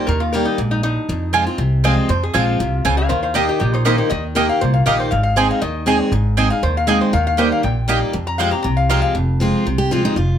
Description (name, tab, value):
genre	bluegrass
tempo	238 BPM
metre	4/4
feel	straight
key	F minor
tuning	A4 = 440 Hz
part	lap resonator guitar	second line	0.0-9.1 s	Eb4 to Bb5	-22 LUFS	left 3 dB	none
part	picked steel-string acoustic guitar	accompaniment	0.0-10.4 s	F2 to Ab4	-20 LUFS	left 1 dB	none
part	upright bass	bass	0.1-10.4 s	F1 to F2	-19 LUFS	equal	none
part	mandolin	stabs	1.3-9.0 s	Ab3 to Bb5	-19 LUFS	right 6 dB	none
part	picked steel-string acoustic guitar	melody	9.8-10.4 s	Eb4 to G4	-20 LUFS	equal	none
room	light reverb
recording	close, detailed microphones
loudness	-15 LUFS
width	side -9 dB against mid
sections	0.0-9.2 A section; 9.2-10.4 B section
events	resonator guitar played with a steel bar solo 0.0-9.2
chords	0.0 Eb; 1.1 Fm; 3.1 Eb; 5.1 Ab; 7.1 Eb; 8.1 Fmadd9; 9.2 Fm